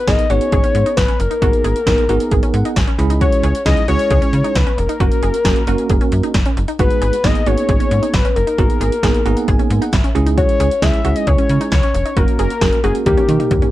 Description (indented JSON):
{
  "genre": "synth-pop",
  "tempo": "134 BPM",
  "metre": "4/4",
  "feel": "straight",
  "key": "G# minor",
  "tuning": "A4 = 440 Hz",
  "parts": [
    { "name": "fat analog lead", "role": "melody", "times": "0.0-13.7 s", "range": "G4 to E5", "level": "-19 LUFS", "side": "left 3 dB", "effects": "analog delay" },
    { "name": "wide unison pluck", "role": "arpeggios", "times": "0.0-13.7 s", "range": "C#4 to G#4", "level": "-26 LUFS", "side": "equal", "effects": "analog delay" },
    { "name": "bell-like tine electric piano", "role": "accompaniment", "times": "0.1-13.7 s", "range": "G#3 to B5", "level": "-21 LUFS", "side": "right 5 dB", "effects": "fast stereo tremolo" },
    { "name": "slap-like FM bass", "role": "bass", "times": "0.1-13.6 s", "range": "E1 to D#3", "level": "-18 LUFS", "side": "equal", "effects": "none" },
    { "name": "punchy analog drum machine", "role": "drums", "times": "0.1-13.7 s", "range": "hi-hat, kick drum, snare drum, toms", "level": "-17 LUFS", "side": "equal", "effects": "none" }
  ],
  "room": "light reverb",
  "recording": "none",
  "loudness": "-13 LUFS",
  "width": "side -15 dB against mid",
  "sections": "0.0-13.7 A section",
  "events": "tine electric piano fill 2.3-3.2, 9.0-10.4; drum fill 13.1-13.7",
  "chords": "0.0 G#madd9; 3.0 C#m; 5.0 F#; 6.8 G#madd9; 10.2 C#m; 12.2 F#; 13.1 D#"
}